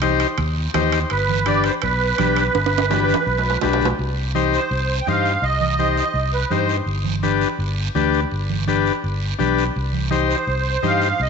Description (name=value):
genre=latin, cumbia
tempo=166 BPM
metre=4/4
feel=straight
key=C harmonic minor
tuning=A4 = 440 Hz
part: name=combo organ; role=accompaniment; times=0.0-11.1 s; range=D4 to C5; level=-22 LUFS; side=left 9 dB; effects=spring reverb
part: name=fingered electric bass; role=bass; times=0.0-11.3 s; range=G1 to G2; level=-22 LUFS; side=equal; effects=none
part: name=congas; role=percussion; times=0.0-11.0 s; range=none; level=-28 LUFS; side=right 12 dB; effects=none
part: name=guiro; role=percussion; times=0.0-11.3 s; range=none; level=-34 LUFS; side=right 12 dB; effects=none
part: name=timbales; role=percussion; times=0.0-3.9 s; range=none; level=-26 LUFS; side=right 9 dB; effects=none
part: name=musette accordion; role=melody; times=1.1-6.8, 10.3-11.3 s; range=B4 to G5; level=-21 LUFS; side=right 4 dB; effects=none
room=moderate echo chamber reverb, RT60 1.6 s, studio ambience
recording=1960s-style stereo with parts hard left and right, nothing above 7.9 kHz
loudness=-17 LUFS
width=side -5 dB against mid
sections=0.0-4.0 A section; 4.0-11.3 B section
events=drum fill 2.5-4.0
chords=0.0 Cm; 1.1 G; 4.0 Cm; 6.9 G; 9.8 Cm